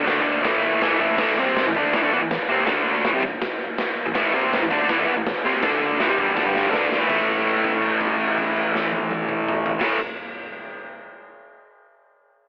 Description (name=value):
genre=garage rock duo or trio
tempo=163 BPM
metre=4/4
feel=straight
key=A minor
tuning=A4 = 440 Hz
part: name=overdriven electric guitar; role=riff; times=0.0-10.0 s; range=G2 to D4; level=-22 LUFS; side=equal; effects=cassette tape
part: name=raw garage drum kit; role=drums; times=0.1-9.9 s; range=crash cymbal, kick drum, snare drum, toms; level=-27 LUFS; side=equal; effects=cassette tape
room=light reverb, small room ambience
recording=home recording on cassette, telephone sound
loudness=-21 LUFS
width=mono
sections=0.0-1.2 A section; 1.2-7.1 B section; 7.1-10.0 C section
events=drum fill 6.4-7.1; held note 7.1-9.8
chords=0.4 A5; 1.2 Am; 2.7 D5; 3.0 Am; 5.6 D5; 6.0 A5